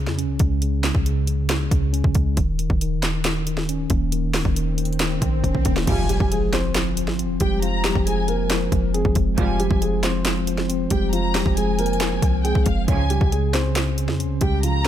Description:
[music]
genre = hip hop, trap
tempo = 137 BPM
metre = 4/4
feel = half-time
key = F minor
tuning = A4 = 440 Hz
[part]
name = mellow tine electric piano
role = accompaniment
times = 0.0-14.9 s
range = Db3 to Db4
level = -25 LUFS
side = equal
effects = medium stereo tremolo
[part]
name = clean 808-style bass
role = bass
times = 0.0-14.9 s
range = Eb1 to F2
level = -24 LUFS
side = equal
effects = none
[part]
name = trap drum kit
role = drums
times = 0.1-14.9 s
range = crash cymbal, handclaps, hi-hat, kick drum, snare drum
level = -23 LUFS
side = equal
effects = overdrive
[part]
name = swell and impact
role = sound effects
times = 4.6-7.6 s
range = none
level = -31 LUFS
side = equal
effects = none
[part]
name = dark concert grand piano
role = melody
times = 5.9-14.9 s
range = F3 to Db5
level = -26 LUFS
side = equal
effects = ping-pong delay
[part]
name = dark studio violin section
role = second line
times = 5.9-14.9 s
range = F5 to Bb5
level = -30 LUFS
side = left 1 dB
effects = ping-pong delay
[part]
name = warm studio string section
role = stabs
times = 5.9-6.2, 9.4-9.7, 12.9-13.2 s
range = Ab2 to G3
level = -30 LUFS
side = right 7 dB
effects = none
[sound]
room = little or no reverb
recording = none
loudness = -19 LUFS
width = side -11 dB against mid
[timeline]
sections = 0.0-5.9 A section; 5.9-14.9 B section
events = swell 4.6-5.9; drum fill 5.4-5.9; impact 5.9-7.6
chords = 0.0 Db5; 2.4 Eb5; 5.9 Fmadd9; 12.9 Db

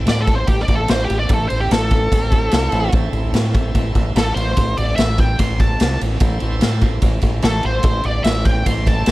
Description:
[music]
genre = blues rock power trio and southern rock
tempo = 147 BPM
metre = 4/4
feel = straight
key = A minor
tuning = A4 = 440 Hz
[part]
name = bright tonewheel organ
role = sustained chords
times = 0.0-9.1 s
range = C4 to C5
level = -31 LUFS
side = right 3 dB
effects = slow rotary speaker, overdrive
[part]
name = growling fingered electric bass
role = bass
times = 0.0-9.1 s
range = A1 to A2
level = -20 LUFS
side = equal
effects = overdrive
[part]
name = octave-fuzz lead guitar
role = melody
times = 0.1-9.1 s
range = G4 to C6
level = -22 LUFS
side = equal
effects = wah, distortion
[part]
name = raw garage drum kit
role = drums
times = 0.1-9.1 s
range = kick drum, ride cymbal, snare drum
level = -18 LUFS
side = equal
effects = none
[sound]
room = small room ambience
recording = none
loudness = -15 LUFS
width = side -18 dB against mid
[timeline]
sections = 0.0-9.1 A section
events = lead electric guitar solo 0.0-9.1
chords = 0.0 Am

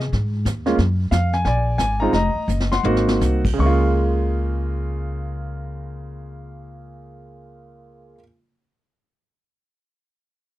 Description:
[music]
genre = jazz piano trio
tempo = 155-182 BPM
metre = 4/4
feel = swing 63% on 8ths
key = Db major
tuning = A4 = 440 Hz
[part]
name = clear concert grand piano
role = melody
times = 0.0-8.2 s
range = Db3 to Db6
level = -23 LUFS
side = right 1 dB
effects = none
[part]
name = upright bass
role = bass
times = 0.0-8.1 s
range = F1 to C3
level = -21 LUFS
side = equal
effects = none
[part]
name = vintage brush drum kit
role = drums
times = 0.0-3.5 s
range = brushed snare drum, crash cymbal, hi-hat, kick drum, snare drum, toms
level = -25 LUFS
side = equal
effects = none
[sound]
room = little or no reverb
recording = dry, close 1970s-style studio recording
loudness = -18 LUFS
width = side -15 dB against mid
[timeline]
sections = 0.0-3.6 A section; 3.6-6.7 B section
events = slowing down 0.8-3.6; drum fill 2.5-3.2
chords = 0.1 Ab5; 0.8 N.C.; 1.4 Bb7; 2.1 Ebmadd9/F; 2.8 Ab7; 3.6 Db6

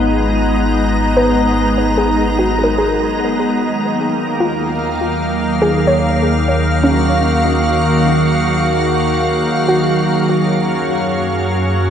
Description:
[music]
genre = ambient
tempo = 74 BPM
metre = 4/4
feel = straight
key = unclear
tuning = A4 = 440 Hz
[part]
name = soft additive organ-like pad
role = sustained chords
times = 0.0-11.9 s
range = D#3 to A#5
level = -14 LUFS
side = equal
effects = ensemble chorus, built-in reverb
[part]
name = soft round pluck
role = arpeggios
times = 0.0-10.5 s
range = C#4 to D#5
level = -19 LUFS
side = equal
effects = chorus, tape echo
[part]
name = deep rumbling drone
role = bass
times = 0.0-11.9 s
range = G#1 to F#2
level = -21 LUFS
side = equal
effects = built-in reverb
[part]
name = organ-like drone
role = drone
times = 0.0-11.9 s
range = F#3 to G#4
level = -26 LUFS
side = right 4 dB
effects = none
[sound]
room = wet plate reverb, RT60 2.7 s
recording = echo-heavy mix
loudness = -13 LUFS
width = side -8 dB against mid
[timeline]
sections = 0.0-11.9 A section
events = none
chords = 0.0 G#m7; 3.6 D#m7; 10.1 F#maj7

